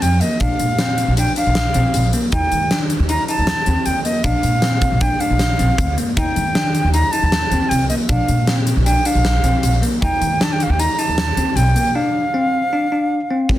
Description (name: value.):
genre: progressive instrumental, band music in an uneven meter.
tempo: 156 BPM.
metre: 5/4.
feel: straight.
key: Bb major.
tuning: A4 = 445 Hz.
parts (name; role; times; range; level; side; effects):
bright reedy concert flute; melody; 0.0-13.5 s; Eb5 to Bb5; -20 LUFS; right 1 dB; none.
bell-like tine electric piano; arpeggios; 0.0-13.6 s; Bb3 to Eb4; -22 LUFS; left 2 dB; none.
upright bass; bass; 0.0-11.7 s; Bb1 to Eb3; -18 LUFS; equal; none.
huge arena drum kit; drums; 0.0-13.6 s; hi-hat, kick drum, snare drum; -21 LUFS; equal; none.
room: moderate studio reverb, RT60 0.7 s.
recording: dense, heavily limited modern master.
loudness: -15 LUFS.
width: side -14 dB against mid.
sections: 0.0-13.6 A section.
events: none.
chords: 0.4 Bbadd9; 2.3 Eb; 4.2 Bbadd9; 6.2 Eb; 8.1 Bbadd9; 10.0 Eb; 11.9 Bbadd9 (rootless).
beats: 0.02 | 0.41 0.79 1.17 1.56 1.94 | 2.32 2.71 3.09 3.48 3.86 | 4.24 4.63 5.01 5.40 5.78 | 6.17 6.55 6.94 7.32 7.71 | 8.09 8.48 8.86 9.25 9.63 | 10.02 10.41 10.79 11.18 11.56 | 11.95 12.34 12.72 13.11 13.49.